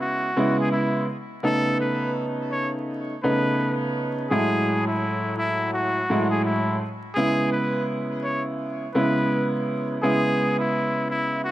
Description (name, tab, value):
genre	hip hop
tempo	84 BPM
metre	4/4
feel	swing 61% on 16ths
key	C# minor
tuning	A4 = 438 Hz
part	trumpet with straight mute	melody	0.0-11.5 s	E4 to C#5	-26 LUFS	left 1 dB	high-pass filter, low-pass filter, digital delay
part	warm baby grand piano	accompaniment	0.0-11.5 s	A2 to E4	-23 LUFS	right 1 dB	high-pass filter, low-pass filter
room	light reverb, small room reverb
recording	dark, warm production, vinyl crackle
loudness	-21 LUFS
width	side -14 dB against mid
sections	0.0-11.5 A section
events	none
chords	0.0 C#m7; 1.4 B9; 4.3 F#m9; 7.2 C#m7